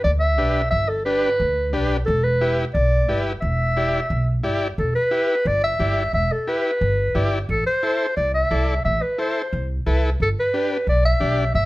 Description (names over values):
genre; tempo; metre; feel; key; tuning
latin, cumbia; 177 BPM; 4/4; straight; E minor; A4 = 440 Hz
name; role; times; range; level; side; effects
breathy clarinet; melody; 0.0-11.7 s; A4 to E5; -21 LUFS; equal; none
upright bass; bass; 0.0-11.7 s; E1 to D2; -22 LUFS; equal; none
combo organ; accompaniment; 0.4-11.4 s; D4 to D5; -25 LUFS; left 1 dB; none
room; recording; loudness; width
light reverb; heard from further back in the room; -18 LUFS; side -18 dB against mid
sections
0.0-4.8 A section; 4.8-11.7 B section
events
none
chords
0.0 G; 2.1 Em; 7.5 Am; 10.2 G